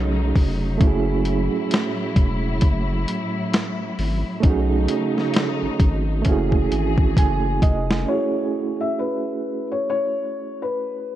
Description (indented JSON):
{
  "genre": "lo-fi hip hop",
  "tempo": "66 BPM",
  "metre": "4/4",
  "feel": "swing 58% on 16ths",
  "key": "F# dorian",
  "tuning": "A4 = 442 Hz",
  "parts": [
    { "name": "overdriven reed electric piano", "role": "accompaniment", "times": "0.0-11.2 s", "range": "A3 to G#5", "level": "-24 LUFS", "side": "right 6 dB", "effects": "fast tremolo, cassette tape, low-pass filter" },
    { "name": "warm studio string section", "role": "sustained chords", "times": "0.0-8.1 s", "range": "A2 to G#4", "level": "-28 LUFS", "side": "left 2 dB", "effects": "low-pass filter" },
    { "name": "saturated sub bass", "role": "bass", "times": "0.0-8.1 s", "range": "E1 to B1", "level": "-23 LUFS", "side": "equal", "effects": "none" },
    { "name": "boom bap sampler-style drum kit", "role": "drums", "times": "0.4-8.1 s", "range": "hi-hat, kick drum, snare drum", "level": "-19 LUFS", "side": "equal", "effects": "none" },
    { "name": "felt-muted upright piano", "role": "melody", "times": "8.1-11.2 s", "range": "B4 to E5", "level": "-25 LUFS", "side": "left 4 dB", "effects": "low-pass filter, diffuse ambient delay" }
  ],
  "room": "light reverb",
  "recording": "cassette tape",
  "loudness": "-19 LUFS",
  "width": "side -12 dB against mid",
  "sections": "0.0-8.1 A section; 8.1-11.2 B section",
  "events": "drum fill 6.3-8.1",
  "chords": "0.0 B13; 0.8 F#m9; 4.4 B13; 6.3 F#m9"
}